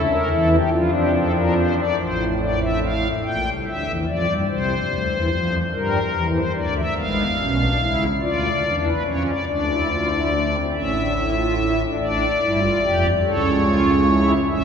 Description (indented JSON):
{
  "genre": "classical, baroque-style 3-part fugue for pipe organ",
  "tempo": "48 BPM (dotted quarters)",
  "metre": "6/8",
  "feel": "straight",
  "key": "D minor from 7.0 s",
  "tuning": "A4 = 436 Hz",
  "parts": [
    { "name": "pipe organ, strings celeste", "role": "solo", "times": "0.0-14.6 s", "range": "F1 to G5", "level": "-18 LUFS", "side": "left 1 dB", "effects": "none" }
  ],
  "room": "wet cathedral reverb, RT60 5.4 s",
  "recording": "recorded in a church or concert hall, small room ambience",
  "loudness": "-18 LUFS",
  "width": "side -7 dB against mid",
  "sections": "0.0-2.0 A section; 2.0-12.0 B section; 12.0-14.6 A section",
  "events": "none",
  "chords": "0.0 A7(no3); 0.7 Dm/F; 2.0 Am; 3.2 Gm/Bb; 4.5 F5/C; 5.7 Edim; 7.0 G#dim7; 9.5 Dm9; 10.7 A; 12.0 Dm; 13.2 A/C#"
}